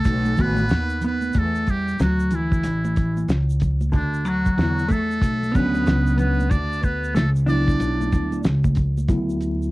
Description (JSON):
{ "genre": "hip hop, jazz-hop", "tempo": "93 BPM", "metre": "4/4", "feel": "swing 64% on 16ths", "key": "D major", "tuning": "A4 = 440 Hz", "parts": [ { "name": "trumpet with metal mute", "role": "melody", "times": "0.0-8.4 s", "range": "D4 to D5", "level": "-27 LUFS", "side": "right 1 dB", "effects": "none" }, { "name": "mellow electric guitar", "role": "second line", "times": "0.0-8.4 s", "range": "D3 to D4", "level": "-24 LUFS", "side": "equal", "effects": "spring reverb" }, { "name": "upright bass", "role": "bass", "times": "0.0-9.7 s", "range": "A1 to E2", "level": "-23 LUFS", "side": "equal", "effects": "none" }, { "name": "egg shaker and congas", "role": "percussion", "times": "0.0-9.7 s", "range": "none", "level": "-32 LUFS", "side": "right 3 dB", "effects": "none" }, { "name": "cloth-damped thuddy drum kit", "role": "drums", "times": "0.1-9.6 s", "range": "hi-hat, kick drum, snare drum", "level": "-22 LUFS", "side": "equal", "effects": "cassette tape" }, { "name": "mellow tine electric piano", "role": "accompaniment", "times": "0.4-0.6, 4.6-9.7 s", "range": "D3 to F#4", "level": "-24 LUFS", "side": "equal", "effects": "fast stereo tremolo" } ], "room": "light reverb", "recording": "home recording on cassette, vinyl crackle", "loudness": "-18 LUFS", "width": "side -19 dB against mid", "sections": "0.0-9.1 A section", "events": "none", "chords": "0.1 B7; 1.3 Dadd9; 2.6 A; 3.9 D69" }